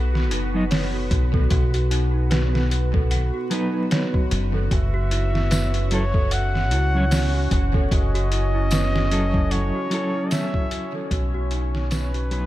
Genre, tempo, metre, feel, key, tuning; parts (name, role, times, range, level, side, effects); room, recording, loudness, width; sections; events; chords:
trip hop; 75 BPM; 4/4; swing 57% on 16ths; F# dorian; A4 = 441 Hz
deep dark ambient pad; sustained chords; 0.0-12.5 s; B3 to C#5; -31 LUFS; equal; chorus, built-in reverb
small celesta; arpeggios; 0.0-12.5 s; D#4 to F#5; -32 LUFS; right 2 dB; analog delay
deep dub fingered electric bass; bass; 0.0-12.5 s; F#1 to C#2; -22 LUFS; equal
bowed-like drone; texture; 0.0-12.5 s; F#4; -36 LUFS; equal; built-in reverb, phaser
trip hop sampler-style drum kit; drums; 0.2-12.5 s; hi-hat, kick drum, snare drum; -24 LUFS; equal; overdrive, analog delay
mellow electric guitar; accompaniment; 0.5-12.4 s; F#3 to D#5; -28 LUFS; equal; tremolo, tape echo
trumpet with bucket mute; melody; 4.7-12.5 s; B4 to F#5; -29 LUFS; equal; vintage 12-bit sampler grit, tape echo
tambourine; percussion; 5.5-12.1 s; -37 LUFS; right 2 dB; analog delay
digital ambience; echo-heavy mix, vinyl crackle; -19 LUFS; side -15 dB against mid
0.0-12.5 A section
fade-out 9.0-12.5
0.0 B; 4.7 F#m7; 11.1 B